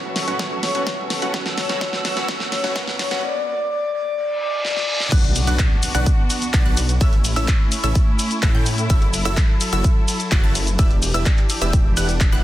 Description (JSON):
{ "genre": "EDM, festival progressive house", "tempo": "127 BPM", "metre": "4/4", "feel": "straight", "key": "B minor", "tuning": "A4 = 442 Hz", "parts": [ { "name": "warm concert grand piano", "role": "accompaniment", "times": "0.0-3.2 s", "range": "B2 to F#4", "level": "-30 LUFS", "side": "right 3 dB", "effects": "sidechain pumping, dub echo" }, { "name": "muted studio string section", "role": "sustained chords", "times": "0.0-12.4 s", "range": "E3 to E6", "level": "-28 LUFS", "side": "equal", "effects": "sidechain pumping" }, { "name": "riser, reverse cymbal and impact", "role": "sound effects", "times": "0.1-7.0 s", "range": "none", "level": "-30 LUFS", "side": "equal", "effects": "none" }, { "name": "big-room dance drum kit", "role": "drums", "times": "0.2-12.4 s", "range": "crash cymbal, handclaps, hi-hat, ride cymbal, shaker, snare drum", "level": "-25 LUFS", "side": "equal", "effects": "none" }, { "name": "dense compressed supersaw", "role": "riff", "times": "0.3-12.4 s", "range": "C#4 to A5", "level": "-29 LUFS", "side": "equal", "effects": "sidechain pumping, dub echo" }, { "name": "wide detuned saw bass", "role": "bass", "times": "0.3-12.4 s", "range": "E1 to A2", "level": "-23 LUFS", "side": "equal", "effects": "chorus, sidechain pumping" }, { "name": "electronic kick drum", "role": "drums", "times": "0.4-12.3 s", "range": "none", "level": "-17 LUFS", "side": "equal", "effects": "high-pass filter on kick" }, { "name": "breathy flute-like synth lead", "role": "melody", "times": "0.6-5.1 s", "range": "C#5 to D5", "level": "-26 LUFS", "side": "left 2 dB", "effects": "analog chorus, dub echo" }, { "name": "wide unison pluck", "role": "arpeggios", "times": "5.1-12.4 s", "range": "E6 to A6", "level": "-30 LUFS", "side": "equal", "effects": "sidechain pumping, dub echo" } ], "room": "light reverb", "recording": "dense, heavily limited modern master, high-pass filter", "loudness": "-17 LUFS", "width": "side -14 dB against mid", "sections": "0.0-5.1 A section; 5.1-12.4 B section", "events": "build-up 0.0-5.1; drum fill 0.0-3.2, 4.6-5.1; reverse cymbal 4.3-5.1; drop 5.1-12.4; impact 5.1-7.0", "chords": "0.0 F#m7; 3.2 N.C.; 5.1 Bm; 7.0 A; 8.9 F#m7; 10.8 Em7", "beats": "0.40 0.87 | 1.34 1.81 2.29 2.76 | 3.23 3.70 4.17 4.65 | 5.12 5.59 6.07 6.54 | 7.01 7.48 7.95 8.43 | 8.90 9.37 9.84 10.32 | 10.79 11.26 11.73 12.21" }